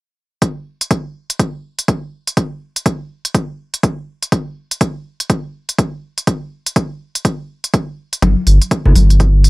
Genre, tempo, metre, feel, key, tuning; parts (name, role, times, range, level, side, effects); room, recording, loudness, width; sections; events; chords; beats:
deep house; 123 BPM; 4/4; swing 61% on 16ths; A4 = 440 Hz
electronic hi-hat; drums; 0.4-9.5 s; -20 LUFS; right 1 dB
electronic kick drum; drums; 0.4-9.3 s; -17 LUFS; equal; high-pass filter on kick, high-pass filter on room
round analog bass; bass; 8.2-9.5 s; G1; -9 LUFS; equal; tube saturation, sidechain pumping
congas; percussion; 8.2-9.1 s; -19 LUFS; left 3 dB
digital ambience; -16 LUFS; side -24 dB against mid
0.4-9.5 A section
| 0.42 0.91 1.39 1.88 | 2.37 2.86 3.35 3.83 | 4.32 4.81 5.30 5.79 | 6.27 6.76 7.25 7.74 | 8.22 8.71 9.20